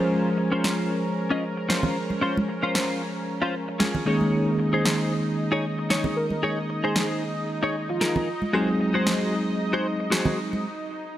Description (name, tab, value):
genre	nu-disco, nu disco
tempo	114 BPM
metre	4/4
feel	swing 55% on 16ths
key	unclear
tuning	A4 = 441 Hz
part	bell-like tine electric piano	accompaniment	0.0-10.7 s	Eb3 to C5	-26 LUFS	equal	fast stereo tremolo, tape echo
part	lush unison pad	sustained chords	0.0-11.2 s	Db4 to Eb5	-32 LUFS	right 1 dB	chorus
part	direct-recorded clean electric guitar	riff	0.0-10.4 s	Db4 to Eb5	-28 LUFS	left 1 dB	analog chorus, low-pass filter, tape echo
part	congas	percussion	0.0-10.6 s	none	-28 LUFS	right 2 dB	none
part	electronic snare drum	drums	0.6-10.2 s	none	-29 LUFS	equal	studio reverb
part	wide unison lead	melody	6.2-8.3 s	F4 to Bb4	-32 LUFS	right 1 dB	tape echo
room	light reverb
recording	none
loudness	-22 LUFS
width	side -12 dB against mid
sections	0.0-11.2 A section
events	break 10.6-11.2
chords	0.0 Dbmaj7; 4.1 Eb7sus4; 8.5 Ab7